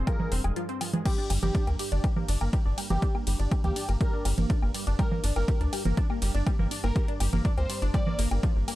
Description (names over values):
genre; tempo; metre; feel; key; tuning
melodic techno; 122 BPM; 4/4; straight; G phrygian; A4 = 440 Hz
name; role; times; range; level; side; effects
tight sequenced synth; arpeggios; 0.0-8.7 s; F3 to D5; -35 LUFS; equal; chorus, phaser, sidechain pumping, analog delay
tight sequencer bass; bass; 0.0-8.6 s; F1 to D2; -26 LUFS; equal; sidechain pumping
analog drone; drone; 0.0-8.8 s; G2; -41 LUFS; right 1 dB; chorus, sidechain pumping
fat analog lead; melody; 0.1-8.2 s; G4 to D5; -37 LUFS; equal; sidechain pumping, analog delay
electronic kick drum; drums; 0.1-8.5 s; none; -26 LUFS; equal; overdrive
punchy analog drum machine; drums; 0.1-8.8 s; congas, crash cymbal, hi-hat, ride cymbal, woodblock; -33 LUFS; right 2 dB; overdrive
room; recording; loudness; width
digital ambience; echo-heavy mix; -25 LUFS; side -16 dB against mid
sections
0.0-8.8 A section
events
break 0.6-1.1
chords
0.0 Fmadd9; 1.1 Gm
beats
0.07 0.56 | 1.06 1.55 2.04 2.53 | 3.02 3.52 4.01 4.50 | 4.99 5.48 5.97 6.46 | 6.96 7.45 7.94 8.43